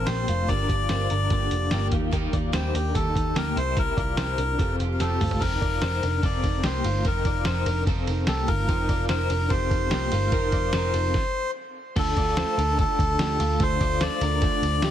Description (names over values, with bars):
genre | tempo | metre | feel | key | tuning
jangly indie pop | 146 BPM | 4/4 | straight | unclear | A4 = 438 Hz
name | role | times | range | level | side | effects
melodica | melody | 0.0-14.9 s | G4 to D5 | -28 LUFS | left 2 dB | none
picked steel-string acoustic guitar | accompaniment | 0.0-11.2 s | G2 to Bb4 | -35 LUFS | right 6 dB | none
warbly lo-fi synth keys | accompaniment | 0.0-5.4, 8.7-14.9 s | A3 to C5 | -33 LUFS | right 4 dB | chorus
electric guitar through a small old amp | arpeggios | 0.0-14.9 s | G3 to D5 | -32 LUFS | left 4 dB | tremolo
vintage muted picked electric bass | bass | 0.0-14.9 s | F1 to Eb2 | -27 LUFS | equal | none
lo-fi sampler-style drum kit | drums | 0.1-14.9 s | crash cymbal, hi-hat, kick drum, ride cymbal, snare drum, toms | -27 LUFS | equal | none
room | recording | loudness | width
light reverb | heavily compressed radio sound, multiband compression | -22 LUFS | side -10 dB against mid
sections
0.0-5.4 A section; 5.4-12.0 B section; 12.0-14.9 C section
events
drum fill 5.0-5.4; stop 11.1-12.0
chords
0.0 Bbadd9; 1.9 Eb; 3.6 C7; 4.6 Fadd9; 5.4 F7sus4; 12.0 Dm